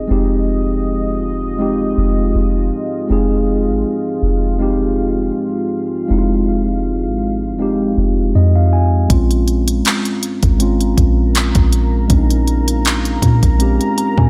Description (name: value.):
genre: contemporary R&B.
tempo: 80 BPM.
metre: 4/4.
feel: swing 54% on 16ths.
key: F minor.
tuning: A4 = 439 Hz.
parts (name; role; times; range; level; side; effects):
mellow tine electric piano; accompaniment; 0.0-14.3 s; Ab3 to Bb5; -20 LUFS; equal; none.
deep dark ambient pad; sustained chords; 0.0-14.3 s; Ab3 to Bb5; -27 LUFS; equal; chorus, built-in reverb.
soft 808-style bass; bass; 0.0-14.3 s; F1 to Bb2; -18 LUFS; equal; none.
smooth R&B drum kit; drums; 9.1-14.3 s; handclaps, hi-hat, kick drum; -18 LUFS; equal; none.
room: light reverb.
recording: none.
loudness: -16 LUFS.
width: mono.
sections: 0.0-14.3 A section.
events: tine electric piano fill 8.0-9.1, 13.6-14.3.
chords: 0.0 Fm9; 9.1 Bbm9.